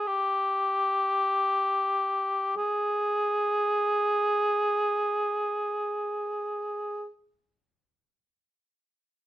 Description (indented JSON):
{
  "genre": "classical, free, expressive piece for unaccompanied cor anglais",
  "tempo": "free time",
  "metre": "none",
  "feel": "none",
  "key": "unclear",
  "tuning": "A4 = 440 Hz",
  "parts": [
    { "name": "mellow cor anglais", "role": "solo", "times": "0.0-7.1 s", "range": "G4 to G#4", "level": "-25 LUFS", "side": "equal", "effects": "none" }
  ],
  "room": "little or no reverb",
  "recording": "dark, warm production",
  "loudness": "-25 LUFS",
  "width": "side -14 dB against mid",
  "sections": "0.0-2.5 A section; 2.5-9.3 B section",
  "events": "slowing down 0.0-2.5",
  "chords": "none",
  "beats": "free time"
}